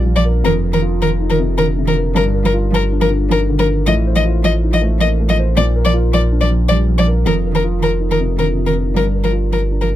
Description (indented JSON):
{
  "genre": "neoclassical piano and strings",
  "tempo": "106 BPM",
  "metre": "3/4",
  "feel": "rubato",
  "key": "unclear",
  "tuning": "A4 = 441 Hz",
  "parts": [
    { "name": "dark upright piano", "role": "accompaniment", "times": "0.0-10.0 s", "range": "F2 to C5", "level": "-20 LUFS", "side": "left 1 dB", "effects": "none" },
    { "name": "glassy FM pad", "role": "sustained chords", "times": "0.0-10.0 s", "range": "D4 to C5", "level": "-28 LUFS", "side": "right 1 dB", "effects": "ensemble chorus, built-in reverb" },
    { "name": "punchy sub bass", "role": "bass", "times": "0.0-10.0 s", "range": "F1 to Bb1", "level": "-17 LUFS", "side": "equal", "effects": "none" },
    { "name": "rich violin", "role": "melody", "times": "0.2-9.9 s", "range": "Bb4 to Eb5", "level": "-19 LUFS", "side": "left 4 dB", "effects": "none" },
    { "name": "dark cello", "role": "second line", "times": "0.2-9.9 s", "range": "Eb3 to F3", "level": "-21 LUFS", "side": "right 6 dB", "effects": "none" }
  ],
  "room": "little or no reverb",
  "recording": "close, detailed microphones",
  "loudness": "-13 LUFS",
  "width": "side -13 dB against mid",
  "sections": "0.0-10.0 A section",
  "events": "none",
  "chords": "0.4 F7sus4; 2.2 Gm7; 3.9 F7/A; 5.6 Bb; 7.3 F7sus4; 8.9 Gm7",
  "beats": "| 0.43 1.00 1.58 | 2.15 2.73 3.30 | 3.87 4.44 5.00 | 5.57 6.13 6.69 | 7.25 7.81 8.38 | 8.95 9.52"
}